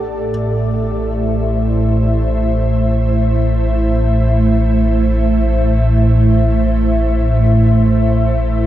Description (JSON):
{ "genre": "ambient", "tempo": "free time", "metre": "none", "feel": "none", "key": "A minor", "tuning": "A4 = 443 Hz", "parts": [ { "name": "ethereal airy pad", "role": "sustained chords", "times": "0.0-8.7 s", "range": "A2 to E5", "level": "-14 LUFS", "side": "equal", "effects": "ensemble chorus, built-in reverb" }, { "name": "warm sub bass", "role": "bass", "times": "0.0-8.7 s", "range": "A1", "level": "-17 LUFS", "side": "equal", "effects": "none" }, { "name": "analog drone", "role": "drone", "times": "2.1-8.7 s", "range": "A3", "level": "-32 LUFS", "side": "equal", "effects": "none" } ], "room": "moderate huge ambient reverb, RT60 7.3 s", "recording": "none", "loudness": "-12 LUFS", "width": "side -13 dB against mid", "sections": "0.0-8.7 A section", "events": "none", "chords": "0.0 Am" }